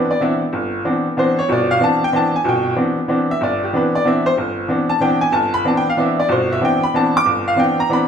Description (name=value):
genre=jazz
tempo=187 BPM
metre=3/4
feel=swing 64% on 8ths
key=C major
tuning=A4 = 440 Hz
part: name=bright upright piano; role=solo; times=0.0-8.1 s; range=G1 to D6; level=-15 LUFS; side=equal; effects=none
room=wet stone room reverb, RT60 1.2 s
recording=band playing live in one room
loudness=-15 LUFS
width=side -7 dB against mid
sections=0.0-8.1 A section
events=none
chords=0.0 Cmaj9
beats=0.20 | 0.52 0.84 1.16 | 1.48 1.80 2.12 | 2.44 2.76 3.08 | 3.40 3.72 4.04 | 4.36 4.68 5.00 | 5.32 5.64 5.96 | 6.29 6.61 6.93 | 7.25 7.57 7.89